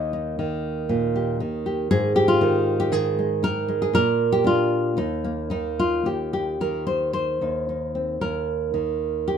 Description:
folk, solo fingerstyle acoustic guitar; 109-120 BPM; 4/4; rubato; Eb major; A4 = 440 Hz
nylon-string guitar; solo; 0.0-9.4 s; Eb2 to Eb5; -21 LUFS; equal
moderate studio reverb, RT60 0.7 s; minimal, uncompressed stereo recording; -21 LUFS; side -8 dB against mid
0.0-6.1 A section; 6.1-9.4 B section
0.0 Eb; 1.9 Absus2; 3.9 Bb6; 5.0 Eb5; 6.1 Cm/Eb; 8.2 Eb5

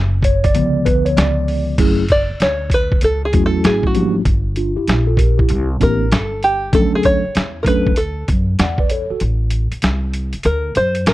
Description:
hip hop, jazz-hop; 97 BPM; 4/4; swing 64% on 16ths; F# minor; A4 = 440 Hz
upright bass; bass; 0.0-11.1 s; F#1 to F#2; -19 LUFS; equal
mellow tine electric piano; accompaniment; 0.2-9.2 s; D3 to F#5; -18 LUFS; equal; medium stereo tremolo
boom bap sampler-style drum kit; drums; 0.2-11.1 s; crash cymbal, hi-hat, kick drum, snare drum; -17 LUFS; equal
open-back banjo; melody; 2.1-11.1 s; F#4 to D5; -18 LUFS; equal
little or no reverb; dry, close 1970s-style studio recording; -14 LUFS; side -16 dB against mid
0.0-1.8 A section; 1.8-11.1 A section
tine electric piano solo 0.0-1.8; five-string banjo solo 1.8-11.1; kick muted 9.2-11.1
0.0 G#7(b5, no3) (rootless); 0.5 C#7b9; 1.8 F#m9; 4.3 Gm; 5.5 C9; 6.7 Dmaj7; 9.2 Am; 10.4 G#9 (rootless)

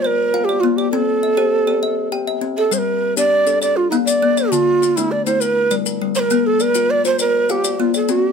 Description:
southern african traditional, mbira-style interlocking cycle; 134 BPM (dotted quarters); 12/8; straight; A4 = 440 Hz
breathy bright low Native American-style wooden flute; melody; 0.0-8.3 s; E4-44c to D5; -16 LUFS; right 3 dB
kalimba; arpeggios; 0.0-8.3 s; D3 to G5; -20 LUFS; left 7 dB
maracas; percussion; 2.7-8.2 s; -25 LUFS; left 9 dB
moderate studio reverb, RT60 0.6 s; -15 LUFS; side -6 dB against mid
0.0-8.3 A section
0.0 Bb; 0.9 C; 2.7 Gm; 3.6 Bb; 4.5 Dm; 5.4 Gm; 6.3 Bb

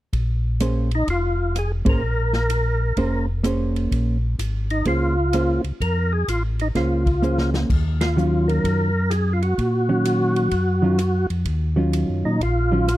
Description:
soul jazz organ trio; 127 BPM; 4/4; swing 66% on 8ths; Bb minor; A4 = 439 Hz
mellow tonewheel organ; bass; 0.1-13.0 s; F1 to Bb2; -21 LUFS; equal; overdrive, chorus vibrato, slow rotary speaker
swinging big-band drum kit; drums; 0.1-13.0 s; crash cymbal, hi-hat, kick drum, ride cymbal, rim click, snare drum; -26 LUFS; equal
hollow-body jazz guitar; accompaniment; 0.6-12.9 s; Eb3 to C5; -23 LUFS; right 2 dB
percussive tonewheel organ; melody; 0.9-13.0 s; Eb4 to Bb4; -24 LUFS; equal; overdrive, chorus vibrato, slow rotary speaker
small room ambience; dry, close 1970s-style studio recording; -19 LUFS; side -15 dB against mid
0.1-13.0 A section
band accent 1.8, 7.9; drum fill 7.2-7.7
0.1 Bbm9; 7.7 Ebm9

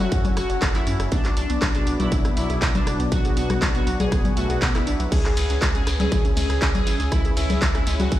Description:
melodic techno; 120 BPM; 4/4; straight; A4 = 440 Hz
resonant sweep polysynth; melody; 0.0-8.2 s; D4 to G#4; -28 LUFS; equal; chorus, sidechain pumping, dub echo
dark analog pad; sustained chords; 0.0-8.2 s; F#4 to E6; -36 LUFS; left 2 dB; chorus, phaser, sidechain pumping
warbly dusty pluck; arpeggios; 0.0-8.2 s; F#3 to C#5; -32 LUFS; equal; chorus, cassette tape, sidechain pumping, ping-pong delay
analog synth brass; stabs; 0.0-8.2 s; B2 to F#4; -32 LUFS; equal; chorus, cassette tape, sidechain pumping, ping-pong delay
round analog bass; bass; 0.0-8.2 s; F#1 to F#2; -26 LUFS; equal; sidechain pumping
punchy analog drum machine; drums; 0.0-8.2 s; congas, crash cymbal, handclaps, hi-hat, ride cymbal, rim click; -27 LUFS; left 1 dB
warbly tape-like pad; texture; 0.0-8.2 s; C#4 to F#5; -36 LUFS; left 1 dB
electronic kick drum; drums; 0.1-8.2 s; -23 LUFS; equal; distortion
shekere; percussion; 5.1-8.2 s; -34 LUFS; left 3 dB
little or no reverb; played on a big sound system in a bare room, stone room reverb; -19 LUFS; side -13 dB against mid
0.0-8.2 A section
0.0 F#m7; 1.1 Bm; 5.1 C#m7

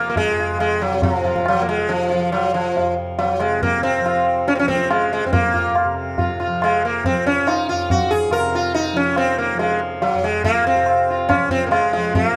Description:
indian classical, Hindustani; 140 BPM; 4/4; straight; F raga bhairavi; A4 = 441 Hz
sitar; melody; 0.0-12.4 s; F3 to Bb4; -21 LUFS; equal
tanpura; drone; 0.0-12.4 s; F2 to F3; -30 LUFS; equal
tabla; percussion; 0.2-12.3 s; -24 LUFS; equal
moderate recital hall reverb, RT60 1.7 s; -19 LUFS; mono
0.0-12.1 A section

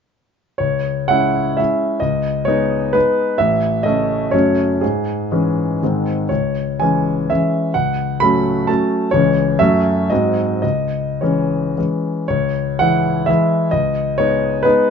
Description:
classical, romantic triple-time dance for piano with dotted rhythms; 100-140 BPM; 3/4; rubato; C# minor; A4 = 440 Hz
clear grand piano; solo; 0.6-14.9 s; A1 to B5; -15 LUFS; left 1 dB
light reverb; nothing above 7.5 kHz; -15 LUFS; side -6 dB against mid
0.6-12.3 A section; 12.3-14.9 A section
0.6 C#m; 2.0 G#m/C#; 3.4 A; 4.3 F#m; 4.8 C#m/G#; 5.8 G#; 6.3 C#m; 7.7 F#m/C#; 9.1 C#m; 9.6 F#m; 10.1 G#7; 10.6 C#m; 13.7 G#m/C#

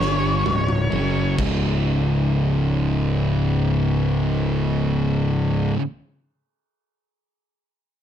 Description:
stoner and doom metal; free time; A4 = 442 Hz
octave-fuzz lead guitar; melody; 0.0-1.3 s; C#5; -24 LUFS; left 1 dB; distortion, slapback echo
thick fuzz guitar; riff; 0.0-5.8 s; C#2 to G3; -24 LUFS; left 8 dB; distortion
thick fuzz guitar; riff; 0.0-5.8 s; C#2 to G3; -22 LUFS; right 5 dB; distortion
fuzz picked electric bass; bass; 0.0-5.7 s; C#1 to G1; -25 LUFS; left 1 dB; overdrive
big rock drum kit; drums; 0.0-1.6 s; crash cymbal, kick drum, snare drum, toms; -29 LUFS; equal
little or no reverb; dark, warm production; -19 LUFS; side -9 dB against mid
0.0-1.8 A section; 1.8-5.6 B section
drum fill 0.0-1.8; lead electric guitar solo 0.0-1.8
0.0 C#5; 0.9 F#5; 1.4 C#5

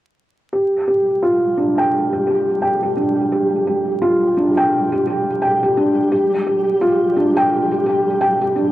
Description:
trip hop; 86 BPM; 4/4; swing 59% on 16ths; A4 = 441 Hz
felt-muted upright piano; arpeggios; 0.5-8.7 s; D4 to G5; -15 LUFS; equal; vintage 12-bit sampler grit, low-pass filter, cassette tape, tape echo
flickering grainy texture; texture; 1.0-8.7 s; G3 to G4; -24 LUFS; equal; built-in reverb, cassette tape
moderate lush hall reverb, RT60 2.6 s; home recording on cassette, vinyl crackle; -15 LUFS; side -14 dB against mid
0.5-8.7 A section
filter sweep on felt piano 0.5-8.7
0.5 G5

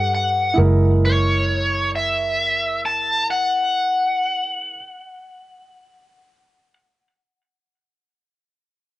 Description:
slow blues; 44 BPM (dotted quarters); 12/8; straight; F# mixolydian; A4 = 440 Hz
smooth overdriven lead guitar; melody; 0.0-6.7 s; C#5 to A5; -20 LUFS; left 1 dB; cassette tape
warm grand piano; accompaniment; 0.0-4.8 s; G#3 to B4; -25 LUFS; right 3 dB; cassette tape
vintage muted fingered electric bass; bass; 0.0-4.8 s; F#1 to G2; -20 LUFS; equal
light reverb; home recording on cassette, nothing above 10.9 kHz; -17 LUFS; side -16 dB against mid
0.6-6.0 A section
0.0 Gadd9; 0.6 F#9

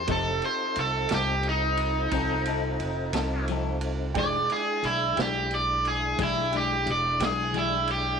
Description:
slow blues; 59 BPM (dotted quarters); 12/8; straight; A4 = 445 Hz
overdriven semi-hollow guitar; melody; 0.0-8.2 s; Eb4 to D5; -26 LUFS; right 1 dB
clear upright piano; accompaniment; 0.0-8.2 s; G#3 to G5; -38 LUFS; right 11 dB
mellow tonewheel organ; sustained chords; 0.0-8.2 s; G#3 to A4; -35 LUFS; right 1 dB; overdrive, chorus vibrato, slow rotary speaker
upright bass; bass; 0.0-8.2 s; E1 to C2; -31 LUFS; equal
electric guitar at the edge of break-up; accompaniment; 0.1-7.8 s; E3 to A4; -34 LUFS; left 13 dB; tremolo
vintage drum kit; drums; 0.1-8.0 s; kick drum, ride cymbal, snare drum; -36 LUFS; right 4 dB
light reverb, small room ambience; 1960s-style stereo with parts hard left and right; -24 LUFS; side -6 dB against mid
0.0-8.2 A section
overdriven electric guitar solo 0.0-8.2
0.1 F7; 4.2 E7#9

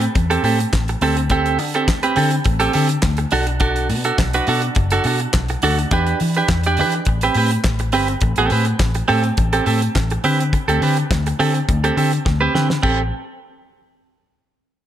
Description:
disco; 104 BPM; 4/4; straight; A dorian; A4 = 444 Hz
clean electric guitar; accompaniment; 0.0-13.0 s; C4 to D5; -19 LUFS; right 4 dB; spring reverb
vintage muted fingered electric bass; bass; 0.0-13.1 s; F#1 to E3; -20 LUFS; left 1 dB
damped 70s drum kit; drums; 0.0-13.0 s; crash cymbal, handclaps, hi-hat, kick drum, snare drum; -22 LUFS; left 1 dB
light reverb; -15 LUFS; side -11 dB against mid
0.0-8.2 A section; 8.2-12.8 B section; 12.8-14.9 C section
drum fill 12.3-12.8
0.0 Am7; 1.0 D7sus4; 3.3 Bm7; 5.9 Em7; 7.1 Am9; 8.2 Am7; 10.2 D7sus4; 12.8 Am7

